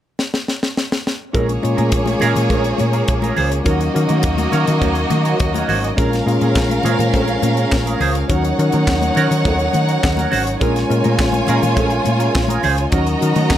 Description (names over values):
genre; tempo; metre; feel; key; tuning
disco; 104 BPM; 4/4; straight; Bb minor; A4 = 440 Hz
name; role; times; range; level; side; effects
tight funk drum kit; drums; 0.2-13.6 s; handclaps, hi-hat, kick drum, snare drum; -21 LUFS; equal; none
rich studio violin section; second line; 1.3-13.6 s; Bb3 to Bb5; -20 LUFS; right 1 dB; none
clean electric guitar; accompaniment; 1.3-13.5 s; Db4 to C5; -23 LUFS; right 5 dB; wah
mellow tine electric piano; accompaniment; 1.3-13.6 s; Gb3 to Gb5; -21 LUFS; left 3 dB; overdrive
hollow-body short-scale fingered electric bass; bass; 1.4-13.6 s; Ab1 to Eb3; -19 LUFS; equal; none
congas; percussion; 1.6-13.6 s; none; -26 LUFS; left 6 dB; none
room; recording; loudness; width
light reverb, studio ambience; none; -14 LUFS; side -11 dB against mid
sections
0.0-1.3 A section; 1.3-13.6 B section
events
drum fill 0.2-1.3; tine electric piano fill 5.1-6.0, 8.9-10.6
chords
0.0 N.C.; 1.3 Bbm7; 3.7 Ebm7; 6.0 Bbm7; 8.3 Ebm7; 10.6 Bbm7; 12.9 Ebm7